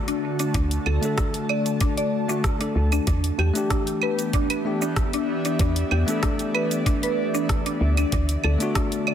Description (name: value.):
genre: organic downtempo.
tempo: 95 BPM.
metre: 4/4.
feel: straight.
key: E minor.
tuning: A4 = 436 Hz.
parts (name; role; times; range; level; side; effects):
airy breathy pad; sustained chords; 0.0-9.1 s; D3 to A5; -28 LUFS; equal; chorus, vintage 12-bit sampler grit, sidechain pumping.
mallet-like synth pluck; arpeggios; 0.1-9.1 s; D4 to D5; -28 LUFS; equal; wide subtle chorus, digital delay.
deep house drum kit; drums; 0.1-9.1 s; cabasa, claves, hi-hat, rim click; -29 LUFS; right 3 dB; small room ambience, soft clipping on snare.
woody FM bass; bass; 0.5-8.6 s; D2 to E2; -22 LUFS; equal; sidechain pumping.
electronic kick drum; drums; 0.5-8.9 s; none; -24 LUFS; equal; small room ambience.
bell-like tine electric piano; accompaniment; 1.0-9.1 s; A3 to A4; -29 LUFS; left 4 dB; sidechain pumping, digital delay.
room: light reverb, digital ambience.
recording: dense, heavily limited modern master.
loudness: -21 LUFS.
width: side -9 dB against mid.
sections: 0.0-9.1 A section.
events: none.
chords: 0.0 D; 3.1 Em7; 8.1 D.